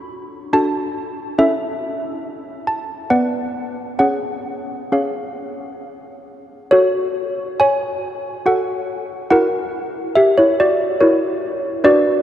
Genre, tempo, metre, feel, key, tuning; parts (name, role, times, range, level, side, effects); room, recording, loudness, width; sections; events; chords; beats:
classical, tune for handbells; 66-72 BPM; 3/4; straight; F# minor; A4 = 441 Hz
malleted handbells; solo; 0.0-12.2 s; B3 to B5; -16 LUFS; equal
wet cathedral reverb, RT60 5.9 s; dark, warm production; -16 LUFS; side -11 dB against mid
0.0-6.7 A section; 6.7-12.2 B section
0.0 D; 1.4 A/C#; 3.1 Bm; 4.0 C#; 6.7 F#m; 9.3 F#7/E
0.55 | 1.39 2.25 3.11 | 4.00 4.91 5.81 | 6.70 7.59 8.45 | 9.29 10.14 10.98 | 11.82